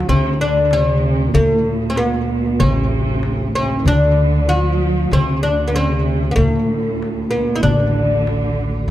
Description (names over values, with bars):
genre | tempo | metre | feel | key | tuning
Arabic maqam ensemble | 95 BPM | 4/4 | straight | D maqam huzam | A4 = 440 Hz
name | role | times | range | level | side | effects
oud | melody | 0.0-8.9 s | A3+40c to F#4-50c | -19 LUFS | left 2 dB | tape echo
dark studio cello section | second line | 0.0-8.9 s | A2+40c to F#3-50c | -21 LUFS | right 3 dB | none
upright bass | bass | 0.0-8.9 s | A1 to D2 | -18 LUFS | equal | none
dark studio cello section | drone | 0.0-8.9 s | D2 | -26 LUFS | equal | none
darbuka | percussion | 0.0-8.8 s | none | -22 LUFS | left 2 dB | none
room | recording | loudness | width
light reverb | dark, warm production | -14 LUFS | side -13 dB against mid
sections
0.0-8.9 A section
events
none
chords
none